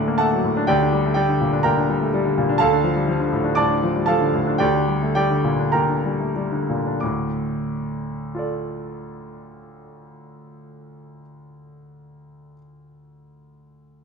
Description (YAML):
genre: classical, virtuoso piano study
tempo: 89-126 BPM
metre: 4/4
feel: rubato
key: D minor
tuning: A4 = 440 Hz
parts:
  - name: clear concert grand piano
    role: solo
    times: 0.0-14.0 s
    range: D2 to D6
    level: -19 LUFS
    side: equal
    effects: none
room: moderate recital hall reverb, RT60 1.5 s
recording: minimal, uncompressed stereo recording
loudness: -18 LUFS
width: side -5 dB against mid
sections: 0.0-7.0 A section; 7.0-12.3 B section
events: slowing down 1.6-7.0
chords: 0.0 D; 0.7 Gm/D; 2.6 Dm; 4.6 Gm/D; 7.0 Dm